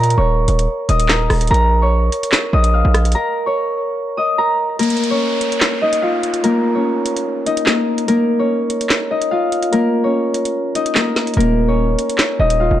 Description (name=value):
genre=hip hop, drill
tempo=146 BPM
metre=4/4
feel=half-time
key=unclear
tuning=A4 = 441 Hz
part: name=Celtic harp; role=melody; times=0.0-12.8 s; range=Bb3 to F6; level=-16 LUFS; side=left 1 dB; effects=low-pass filter, tape echo
part: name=distorted 808-style bass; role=bass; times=0.0-3.1, 11.4-12.8 s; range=Eb1 to Bb2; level=-15 LUFS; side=equal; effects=distortion
part: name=drill drum kit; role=drums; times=0.0-12.6 s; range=handclaps, hi-hat, rim click, snare drum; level=-19 LUFS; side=right 1 dB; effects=none
part: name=downlifter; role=sound effects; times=4.8-8.1 s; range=none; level=-28 LUFS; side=right 1 dB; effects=none
room=light reverb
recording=dark, warm production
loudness=-14 LUFS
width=side -12 dB against mid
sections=0.0-4.8 A section; 4.8-12.8 B section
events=break 3.1-4.8; kick muted 4.8-11.4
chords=0.0 Eb5; 1.5 Bbsus4; 11.4 Eb5